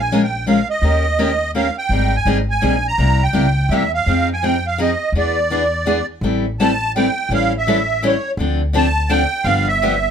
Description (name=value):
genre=acoustic string swing (jazz manouche)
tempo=167 BPM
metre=3/4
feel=swing 62% on 8ths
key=A minor from 6.2 s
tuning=A4 = 439 Hz
part: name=musette accordion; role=melody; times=0.0-10.1 s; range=C#5 to Bb5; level=-18 LUFS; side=right 3 dB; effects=none
part: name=upright bass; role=bass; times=0.0-10.1 s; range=G1 to F2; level=-20 LUFS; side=equal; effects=none
part: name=picked steel-string acoustic guitar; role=accompaniment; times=0.1-9.9 s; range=C3 to Bb4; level=-19 LUFS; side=left 2 dB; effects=none
room=light reverb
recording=close, detailed microphones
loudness=-15 LUFS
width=side -8 dB against mid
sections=0.0-6.2 A section; 6.2-10.1 B section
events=none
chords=0.0 Bbm7; 0.8 Eb7; 1.9 Abmaj7; 3.0 C7; 4.1 Fm7; 5.1 E7; 6.2 Am7; 7.3 A7; 8.4 Dm7; 9.5 G7